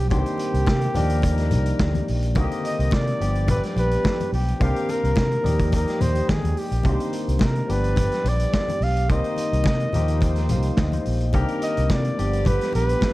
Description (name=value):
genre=disco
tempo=107 BPM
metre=4/4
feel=straight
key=C minor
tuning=A4 = 440 Hz
part: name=warm flugelhorn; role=melody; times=0.0-13.1 s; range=G4 to F5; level=-27 LUFS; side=equal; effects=none
part: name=barky tine electric piano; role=accompaniment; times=0.0-13.1 s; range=D3 to F5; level=-29 LUFS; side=left 4 dB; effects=overdrive
part: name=warm French horn section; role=sustained chords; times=0.0-13.1 s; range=C3 to D5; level=-34 LUFS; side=right 1 dB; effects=none
part: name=fingered electric bass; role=bass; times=0.0-12.9 s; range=G1 to Eb3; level=-22 LUFS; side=equal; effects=none
part: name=clear horn section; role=stabs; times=0.1-13.1 s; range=D3 to F5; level=-33 LUFS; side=right 2 dB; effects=tape echo
part: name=vintage drum kit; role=drums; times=0.1-13.1 s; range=hi-hat, kick drum, snare drum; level=-25 LUFS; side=equal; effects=none
part: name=congas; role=percussion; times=0.1-13.1 s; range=none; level=-30 LUFS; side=left 3 dB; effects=none
room=light reverb, small room ambience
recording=dark, warm production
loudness=-19 LUFS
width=side -18 dB against mid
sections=0.0-13.1 A section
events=tine electric piano fill 10.2-11.3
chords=0.1 Cm7; 1.0 Ebmaj7; 2.4 Cm7; 3.2 G7; 4.6 Cm7; 5.5 Ebmaj7; 6.9 Cm7; 7.7 G7; 9.1 Cm7; 9.9 Ebmaj7; 11.3 Cm7; 12.2 G7